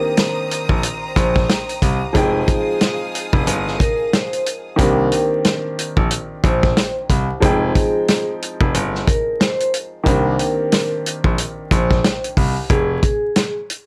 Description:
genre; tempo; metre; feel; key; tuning
hip hop, boom-bap hip-hop; 91 BPM; 4/4; swing 60% on 16ths; C minor; A4 = 440 Hz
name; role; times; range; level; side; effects
vibraphone with soft mallets; melody; 0.0-13.5 s; Ab4 to C5; -24 LUFS; equal; analog delay
warm upright piano; accompaniment; 0.0-12.7 s; Eb3 to G5; -26 LUFS; equal; none
warm studio string section; sustained chords; 0.0-4.8 s; Ab4 to Eb6; -30 LUFS; equal; none
warm soul drum kit; drums; 0.2-13.9 s; hi-hat, kick drum, snare drum; -20 LUFS; equal; none
clear concert grand piano; bass; 0.7-13.0 s; F1 to C2; -24 LUFS; equal; tube saturation
room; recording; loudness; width
little or no reverb; dry, gritty hardware recording, vinyl crackle; -18 LUFS; mono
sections
0.0-4.8 A section; 4.8-13.9 A section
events
none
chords
0.0 Cm7; 2.1 Fm7; 4.8 Cm7; 7.4 Fm7; 10.1 Cm7; 12.7 Fm

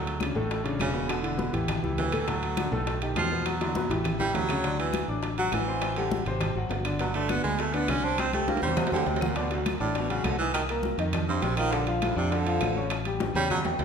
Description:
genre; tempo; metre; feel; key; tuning
Afro-Cuban jazz; 203 BPM; 4/4; straight; D major; A4 = 440 Hz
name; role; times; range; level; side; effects
bright baritone saxophone; second line; 0.0-13.6 s; D2 to D4; -30 LUFS; right 4 dB; none
clear concert grand piano; accompaniment; 0.0-13.8 s; A2 to Eb6; -31 LUFS; left 2 dB; none
fingered electric bass; bass; 0.0-13.8 s; E1 to F2; -32 LUFS; equal; none
congas; percussion; 0.1-13.8 s; none; -36 LUFS; left 2 dB; none
timbales; percussion; 0.1-13.8 s; none; -36 LUFS; right 4 dB; none
bongos; percussion; 0.2-13.8 s; none; -36 LUFS; left 6 dB; none
claves; percussion; 0.2-13.7 s; none; -43 LUFS; left 4 dB; none
room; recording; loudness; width
wet scoring stage reverb, RT60 1.6 s; recorded in a church or concert hall; -25 LUFS; side -6 dB against mid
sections
0.0-4.6 A section; 4.6-13.8 A section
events
baritone saxophone solo 0.0-13.8; drum fill 3.5-4.6, 8.2-9.4, 13.2-13.8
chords
0.0 Dmaj7sus2; 1.1 Em7; 1.7 A7; 2.3 D6; 2.9 Baug7; 3.5 Em7; 4.0 A7; 4.6 D; 5.8 Am7; 6.4 G#7#11; 7.0 G; 8.2 Cadd9; 9.4 D; 10.5 Cm7; 11.1 F5; 11.7 Bbmaj7; 12.9 A

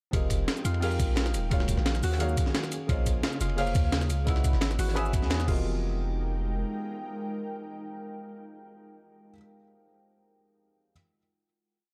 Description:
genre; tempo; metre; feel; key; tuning
liquid drum and bass; 174 BPM; 4/4; straight; unclear; A4 = 440 Hz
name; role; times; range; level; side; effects
felt-muted upright piano; accompaniment; 0.1-10.9 s; Eb3 to Eb6; -38 LUFS; equal; delay
ethereal airy pad; sustained chords; 0.5-9.2 s; Db3 to G5; -41 LUFS; equal; ensemble chorus, built-in reverb, sidechain pumping
Celtic harp; arpeggios; 0.1-8.0 s; Fb4 to F5; -40 LUFS; equal; delay
long sustained 808-style bass; bass; 0.1-6.6 s; Eb1 to F2; -31 LUFS; equal; none
breakbeat sampler-style drum kit; drums; 0.1-5.6 s; crash cymbal, hi-hat, shaker, snare drum; -36 LUFS; equal; none
crunchy breakbeat drum kit; drums; 0.1-5.4 s; hi-hat, ride cymbal, snare drum; -42 LUFS; equal; high-pass filter on cymbals, high-pass filter on hats, high-pass filter on snare, high-pass filter on room
electronic kick drum; drums; 0.1-5.5 s; none; -30 LUFS; equal; none
room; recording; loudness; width
small room ambience; dark, warm production; -28 LUFS; mono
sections
0.1-5.7 drop; 5.7-8.4 final hit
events
drop 0.1-5.7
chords
0.1 Fm11; 1.3 Ebm11; 2.7 Bbm11; 4.1 Dbm11; 5.5 Fm11

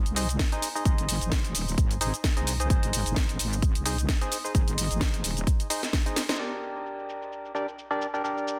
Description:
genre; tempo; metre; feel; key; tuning
bass house; 130 BPM; 4/4; swing 56% on 16ths; unclear; A4 = 438 Hz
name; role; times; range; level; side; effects
percussive organ stab; stabs; 0.0-8.6 s; D4 to Eb5; -34 LUFS; equal; chorus, sidechain pumping, tape echo
wobble bass; bass; 0.0-5.5 s; Eb1 to C2; -32 LUFS; equal; chorus, overdrive, sidechain pumping
house drum kit; drums; 0.1-8.6 s; crash cymbal, hi-hat, shaker, snare drum; -33 LUFS; equal; low-pass filter on hats, low-pass filter on perc, low-pass filter on snare, low-pass filter on cymbals
electronic kick drum; drums; 0.4-6.0 s; none; -27 LUFS; equal; none
room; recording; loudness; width
light reverb; dense, heavily limited modern master, faint mains hum; -27 LUFS; mono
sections
0.0-6.4 A section; 6.4-8.6 B section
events
drum fill 6.2; band accent 6.3; filter sweep on drum 6.4-8.6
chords
0.0 Ab; 6.4 Gm

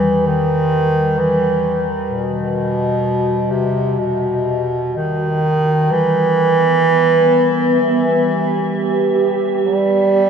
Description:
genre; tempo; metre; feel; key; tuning
dark ambient drone; 64 BPM; 4/4; straight; unclear; A4 = 440 Hz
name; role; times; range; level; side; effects
mellow bass clarinet; melody; 0.0-10.3 s; B2 to G3; -15 LUFS; right 1 dB; tape echo
deep rumbling drone; drone; 0.0-10.3 s; E2 to G3; -25 LUFS; left 2 dB; built-in reverb
sweeping resonant pad; sustained chords; 5.9-10.3 s; B3 to E5; -18 LUFS; right 5 dB; chorus
icy glass pad; texture; 7.0-10.3 s; E5; -38 LUFS; right 6 dB; chorus, built-in reverb
room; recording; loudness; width
wet huge ambient reverb, RT60 8.1 s; none; -14 LUFS; side -7 dB against mid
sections
0.0-5.9 A section; 5.9-10.3 B section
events
none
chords
0.0 Em

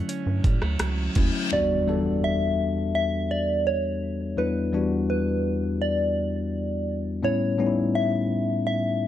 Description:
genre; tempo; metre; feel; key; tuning
contemporary R&B; 84 BPM; 4/4; straight; E dorian; A4 = 440 Hz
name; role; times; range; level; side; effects
soft synth bell; melody; 0.0-9.1 s; B4 to F#6; -27 LUFS; right 1 dB; chorus, phaser, plate reverb
bell-like tine electric piano; accompaniment; 0.0-9.1 s; E2 to A4; -25 LUFS; left 3 dB; none
direct-recorded clean electric guitar; arpeggios; 0.0-2.1 s; D3 to C#4; -35 LUFS; right 8 dB; warbly pitch drift, analog delay
smooth R&B drum kit; drums; 0.1-1.3 s; hi-hat, kick drum, rim click; -23 LUFS; right 1 dB; none
reverse cymbal and impact; sound effects; 0.5-4.4 s; none; -35 LUFS; equal; none
rubbery square bass; bass; 0.3-1.3 s; C#2 to A2; -26 LUFS; right 1 dB; none
room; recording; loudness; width
moderate studio reverb, RT60 0.6 s; dark, warm production; -22 LUFS; side -11 dB against mid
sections
0.0-1.5 A section; 1.5-9.1 B section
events
reverse cymbal 0.5-1.5; impact 1.5-4.4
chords
0.0 Dmaj7; 1.5 Em7; 7.2 A7

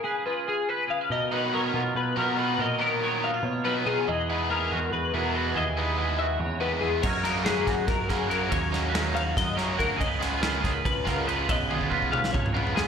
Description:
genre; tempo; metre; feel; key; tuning
math rock and midwest emo; 284 BPM (eighths); 7/8; straight; unclear; A4 = 439 Hz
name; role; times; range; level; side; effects
twangy electric guitar; accompaniment; 0.0-12.9 s; F#2 to C#5; -30 LUFS; right 8 dB; lush chorus, slapback echo
twelve-string electric guitar; arpeggios; 0.0-12.9 s; G#4 to E#5; -29 LUFS; left 6 dB; ensemble chorus, slapback echo
growling picked electric bass; bass; 1.1-12.9 s; B1 to B2; -31 LUFS; equal; overdrive
biting overdriven guitar; riff; 1.3-12.9 s; C#3 to E#4; -30 LUFS; equal; slapback echo
modern studio drum kit; drums; 7.0-12.9 s; crash cymbal, kick drum, ride cymbal, snare drum, toms; -29 LUFS; equal; none
room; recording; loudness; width
light reverb; live gig heard through the venue's PA, recital hall reverb; -24 LUFS; side -7 dB against mid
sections
0.0-1.1 A section; 1.1-12.9 B section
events
break 0.0-1.1; drum fill 11.7-12.9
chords
0.0 C#7; 1.1 Bmaj9#11; 4.1 Emaj9; 7.0 F#6; 10.0 C#13

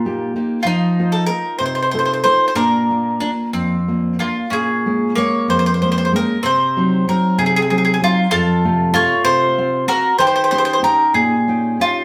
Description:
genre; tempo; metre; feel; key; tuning
italian folk, Italian serenade; 63 BPM (dotted quarters); 6/8; straight; Bb major, Bb minor from 4.5 s; A4 = 443 Hz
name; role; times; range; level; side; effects
mandolin; melody; 0.0-12.0 s; F4 to Db5; -19 LUFS; equal; none
bowl-back mandolin; second line; 0.0-11.8 s; Bb3 to G4; -26 LUFS; equal; none
nylon-string guitar; accompaniment; 0.0-12.0 s; F2 to G5; -21 LUFS; equal; none
room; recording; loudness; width
wet studio reverb, RT60 0.8 s; band playing live in one room; -17 LUFS; mono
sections
0.0-4.5 A section; 4.5-12.0 B section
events
none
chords
0.0 Eb; 0.7 F7; 2.6 Bb; 4.5 Bbm7; 6.4 Cdim; 8.3 F; 10.2 Eb7

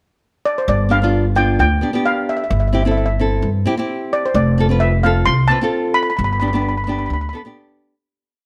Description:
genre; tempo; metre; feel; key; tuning
calypso; 131 BPM; 4/4; swing 54% on 16ths; unclear; A4 = 440 Hz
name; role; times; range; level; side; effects
steel pan; melody; 0.5-7.4 s; C5 to C6; -21 LUFS; equal; none
upright bass; bass; 0.7-7.3 s; F1 to G2; -20 LUFS; equal; none
nylon-string guitar; accompaniment; 0.9-7.9 s; B3 to B4; -23 LUFS; equal; none
room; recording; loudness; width
light reverb; close, detailed microphones; -17 LUFS; mono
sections
0.0-0.7 pickup bar; 0.7-8.0 verse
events
fade-out 6.2-8.0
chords
0.0 N.C.; 0.7 G; 2.5 C/G; 4.4 F; 6.2 G

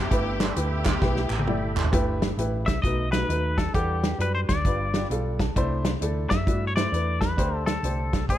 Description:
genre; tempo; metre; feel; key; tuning
uptempo gospel; 132 BPM; 4/4; swing 64% on 8ths; G major; A4 = 440 Hz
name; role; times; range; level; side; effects
warm studio string section; melody; 0.0-1.7 s; B3 to G4; -32 LUFS; left 2 dB; none
tonewheel organ; sustained chords; 0.0-1.9 s; A4 to B5; -37 LUFS; right 4 dB; slow rotary speaker, chorus vibrato
hollow-body short-scale fingered electric bass; bass; 0.0-8.4 s; G1 to G2; -28 LUFS; equal; none
warm baby grand piano; accompaniment; 0.1-8.4 s; G2 to A5; -30 LUFS; equal; none
natural country drum kit; drums; 0.1-8.4 s; hi-hat, kick drum, snare drum, toms; -26 LUFS; equal; none
group handclap; percussion; 0.4-1.8 s; none; -34 LUFS; right 4 dB; none
twangy electric guitar; melody; 2.7-8.4 s; G4 to E5; -29 LUFS; left 3 dB; vibrato effect
room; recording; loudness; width
small room ambience; dark, warm production; -22 LUFS; side -12 dB against mid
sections
0.0-1.9 A section; 1.9-8.4 B section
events
drum fill 1.0-1.9; grand piano fill 4.9-5.6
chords
0.1 G69; 2.8 B7; 3.7 Em11; 4.7 G7; 5.6 C69; 7.4 D7sus4

